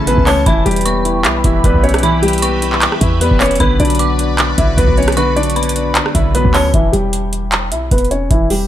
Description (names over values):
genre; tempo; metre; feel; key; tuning
hip hop, trap; 153 BPM; 4/4; half-time; E dorian; A4 = 440 Hz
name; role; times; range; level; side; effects
felt-muted upright piano; melody; 0.0-8.7 s; E3 to E5; -17 LUFS; left 1 dB; low-pass filter
dark detuned synth bell; second line; 0.0-6.7 s; A5 to D6; -23 LUFS; right 1 dB; chorus, tremolo, tape echo
dark concert grand piano; accompaniment; 0.0-6.8 s; C#3 to E4; -19 LUFS; left 2 dB; low-pass filter
sweeping resonant pad; sustained chords; 0.0-6.7 s; C#4 to B5; -25 LUFS; right 1 dB; chorus
warm 808-style bass; bass; 0.0-8.7 s; E1 to E2; -17 LUFS; equal; none
booming analog drum machine; drums; 0.1-8.6 s; handclaps, hi-hat, kick drum, rim click; -16 LUFS; equal; none
room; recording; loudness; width
little or no reverb; none; -11 LUFS; side -12 dB against mid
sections
0.0-6.7 A section; 6.7-8.7 B section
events
none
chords
0.5 Em; 3.6 Bm; 6.7 Em